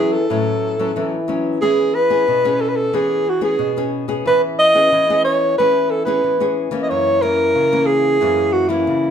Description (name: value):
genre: samba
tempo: 91 BPM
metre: 4/4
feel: straight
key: E major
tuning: A4 = 440 Hz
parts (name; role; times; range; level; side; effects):
- breathy alto saxophone; melody; 0.0-9.1 s; E4 to D#5; -15 LUFS; right 1 dB; none
- nylon-string guitar; accompaniment; 0.0-9.1 s; F#2 to G#4; -20 LUFS; left 3 dB; none
room: moderate large studio reverb, RT60 1.0 s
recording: minimal, uncompressed stereo recording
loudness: -14 LUFS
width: side -8 dB against mid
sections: 0.0-1.6 A section; 1.6-9.1 B section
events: none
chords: 0.0 A69; 1.6 E6; 4.3 C#m7/E; 6.9 F#7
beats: 0.30 0.96 | 1.62 2.28 2.94 3.60 | 4.26 4.92 5.58 6.24 | 6.90 7.56 8.22 8.88